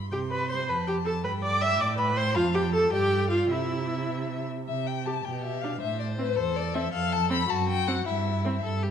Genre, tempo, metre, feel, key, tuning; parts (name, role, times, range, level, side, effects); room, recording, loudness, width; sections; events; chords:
quick classical-period movement for string quartet; 106 BPM (dotted quarters); 6/8; straight; C major; A4 = 441 Hz
warm violin; melody; 0.0-8.6 s; B4 to C6; -32 LUFS; left 10 dB
warm violin; second line; 0.1-8.9 s; E4 to E6; -34 LUFS; left 4 dB
warm viola; accompaniment; 0.1-8.5 s; C4 to E5; -28 LUFS; right 1 dB
warm cello; bass; 0.1-8.9 s; E2 to C3; -30 LUFS; right 3 dB
moderate scoring stage reverb, RT60 2.1 s; dark, warm production; -25 LUFS; side -8 dB against mid
0.0-4.7 A section; 4.7-8.9 A section
0.1 Gadd11/C (rootless); 0.7 F; 1.2 G5; 1.8 Am11; 2.4 Fadd9; 2.9 G5; 3.5 C; 4.7 C5; 5.2 G/B; 5.8 Am; 6.9 F; 7.5 F#dim; 8.1 C/G